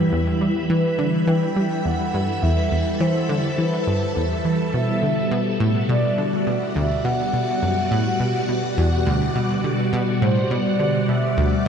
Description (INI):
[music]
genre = ambient, sequencer-driven space music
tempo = 104 BPM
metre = 4/4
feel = straight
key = E minor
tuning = A4 = 440 Hz
[part]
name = phased string machine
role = sustained chords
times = 0.0-11.7 s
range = B2 to B5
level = -22 LUFS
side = equal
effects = ensemble chorus, phaser, shimmer reverb
[part]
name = analog pluck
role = riff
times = 0.1-11.7 s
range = D2 to G3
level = -22 LUFS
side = equal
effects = chorus, shimmer reverb, ping-pong delay
[part]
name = mellow horn-like synth lead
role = melody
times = 0.7-11.7 s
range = B4 to G5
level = -26 LUFS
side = right 1 dB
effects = chorus, shimmer reverb, ping-pong delay
[sound]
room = wet huge ambient reverb, RT60 8.1 s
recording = dark, warm production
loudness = -18 LUFS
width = side -7 dB against mid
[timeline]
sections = 0.0-11.7 A section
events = none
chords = 0.0 Em; 4.7 Bm